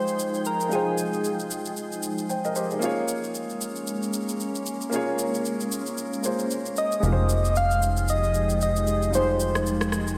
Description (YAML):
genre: amapiano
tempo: 114 BPM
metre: 4/4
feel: swing 58% on 16ths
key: F minor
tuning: A4 = 441 Hz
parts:
  - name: soft struck synth lead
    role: melody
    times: 0.0-1.8, 6.8-9.9 s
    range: Ab4 to F5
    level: -28 LUFS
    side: equal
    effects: chorus, analog delay
  - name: warm baby grand piano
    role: accompaniment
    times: 0.0-10.2 s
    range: G3 to G5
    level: -33 LUFS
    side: equal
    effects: none
  - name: glassy FM pad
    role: sustained chords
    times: 0.0-10.2 s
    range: F3 to G5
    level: -32 LUFS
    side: equal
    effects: ensemble chorus, built-in reverb
  - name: electronic shaker and rim click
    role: drums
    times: 0.1-10.2 s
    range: none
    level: -36 LUFS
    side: equal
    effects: none
  - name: plucky analog bass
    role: bass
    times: 7.0-10.2 s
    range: F1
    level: -28 LUFS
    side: equal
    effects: none
room: wet lush hall reverb, RT60 1.8 s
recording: dreamy mix soaked in reverb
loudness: -26 LUFS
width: mono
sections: 0.0-10.2 A section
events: none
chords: 0.0 Fm9; 2.8 Bbm7; 7.0 Fm9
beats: 0.19 | 0.71 1.24 1.77 2.29 | 2.82 3.35 3.87 4.40 | 4.92 5.45 5.98 6.50 | 7.03 7.56 8.08 8.61 | 9.13 9.66